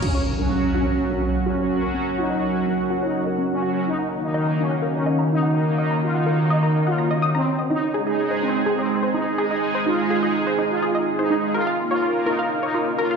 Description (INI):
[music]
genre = techno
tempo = 125 BPM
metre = 4/4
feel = straight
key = unclear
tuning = A4 = 440 Hz
[part]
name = resonant sweep polysynth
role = melody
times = 0.0-13.2 s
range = C4 to F4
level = -26 LUFS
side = equal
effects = chorus, cassette tape, ping-pong delay
[part]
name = deep dark ambient pad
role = sustained chords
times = 0.0-13.2 s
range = Bb3 to Gb5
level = -30 LUFS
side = equal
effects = chorus, built-in reverb
[part]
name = tight sequenced synth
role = arpeggios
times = 0.0-13.1 s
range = Db4 to Eb6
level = -27 LUFS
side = equal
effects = chorus, ping-pong delay
[part]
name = impact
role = sound effects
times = 0.0-1.9 s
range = none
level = -26 LUFS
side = equal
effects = none
[part]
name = brassy analog pad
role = stabs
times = 0.3-13.2 s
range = Eb3 to Bb4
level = -22 LUFS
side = right 2 dB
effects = analog chorus, ping-pong delay
[sound]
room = wet recital hall reverb, RT60 1.6 s, digital ambience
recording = played on a big sound system in a bare room, large studio reverb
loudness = -19 LUFS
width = side -5 dB against mid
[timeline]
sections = 0.0-13.2 A section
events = impact 0.0-1.9; filter sweep on analog polysynth 0.0-13.2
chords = 0.0 Gb; 3.9 Ebm7; 7.7 Ab; 11.5 Bbm